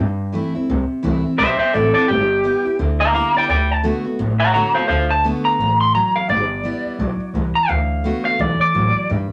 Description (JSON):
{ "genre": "rockabilly", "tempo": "171 BPM", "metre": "4/4", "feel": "swing 61% on 8ths", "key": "unclear", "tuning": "A4 = 440 Hz", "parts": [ { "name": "picked steel-string acoustic guitar", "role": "accompaniment", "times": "0.0-9.3 s", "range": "G2 to F#4", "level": "-26 LUFS", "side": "equal", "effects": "none" }, { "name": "upright bass", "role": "bass", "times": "0.0-9.3 s", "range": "G1 to G2", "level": "-24 LUFS", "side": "equal", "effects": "none" }, { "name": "electric guitar through a small old amp", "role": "melody", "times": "1.4-9.1 s", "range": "G4 to C6", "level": "-19 LUFS", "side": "equal", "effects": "none" } ], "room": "moderate studio ambience, RT60 0.5 s", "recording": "none", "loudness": "-18 LUFS", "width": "mono", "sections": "0.0-9.1 A section", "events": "clean electric guitar solo 0.0-9.1", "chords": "0.0 C6; 2.1 G6; 3.5 D6; 6.3 G6; 7.7 D6", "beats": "0.00 0.35 | 0.70 1.04 1.40 1.75 | 2.10 2.44 2.79 3.15 | 3.50 3.85 4.20 4.55 | 4.90 5.25 5.60 5.95 | 6.30 6.65 7.00 7.35 | 7.70 8.05 8.40 8.75 | 9.10" }